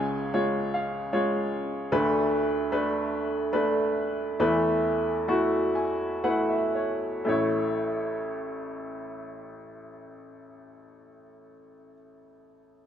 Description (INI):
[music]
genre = folk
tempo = 56-76 BPM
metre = 3/4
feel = straight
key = A major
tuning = A4 = 440 Hz
[part]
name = bright upright piano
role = solo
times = 0.0-12.9 s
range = A1 to G#5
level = -25 LUFS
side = equal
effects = none
[sound]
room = wet large studio reverb, RT60 1.4 s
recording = none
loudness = -24 LUFS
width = side -9 dB against mid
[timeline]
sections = 0.0-7.3 A section; 7.3-10.5 B section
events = slowing down 1.9-7.3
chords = 0.0 C#; 1.9 Bm7/D; 4.4 Esus4; 7.3 A